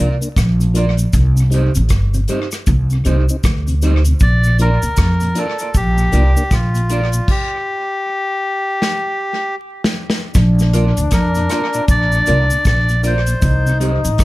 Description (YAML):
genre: roots reggae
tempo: 78 BPM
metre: 4/4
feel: swing 61% on 16ths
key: Bb major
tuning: A4 = 440 Hz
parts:
  - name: electric guitar at the edge of break-up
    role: accompaniment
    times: 0.0-14.0 s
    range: Eb4 to D5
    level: -25 LUFS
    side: right 4 dB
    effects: dub echo
  - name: mellow tonewheel organ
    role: accompaniment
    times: 0.0-14.1 s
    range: Bb2 to Eb4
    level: -24 LUFS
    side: left 2 dB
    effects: slow rotary speaker
  - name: upright bass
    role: bass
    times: 0.0-14.2 s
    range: G1 to F2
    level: -14 LUFS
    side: equal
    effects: none
  - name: cabasa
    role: percussion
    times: 0.2-14.2 s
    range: none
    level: -30 LUFS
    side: left 2 dB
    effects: none
  - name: soft brush drum kit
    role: drums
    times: 0.4-14.2 s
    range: crash cymbal, hi-hat, kick drum, rim click, snare drum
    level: -18 LUFS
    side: equal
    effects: tape echo
  - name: melodica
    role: melody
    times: 4.2-13.8 s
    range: F4 to D5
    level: -20 LUFS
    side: equal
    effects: dub echo
  - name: bright trombone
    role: second line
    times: 10.4-14.2 s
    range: D4 to Eb4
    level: -24 LUFS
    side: left 4 dB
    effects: dub echo
room: little or no reverb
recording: vinyl crackle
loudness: -13 LUFS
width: side -19 dB against mid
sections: 0.0-10.3 A section; 10.3-14.2 B section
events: stop 7.3-10.3; drum fill 8.8-10.3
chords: 0.0 Bb; 1.1 Cm; 4.2 Bb; 7.3 N.C.; 10.3 Bb; 13.4 Cm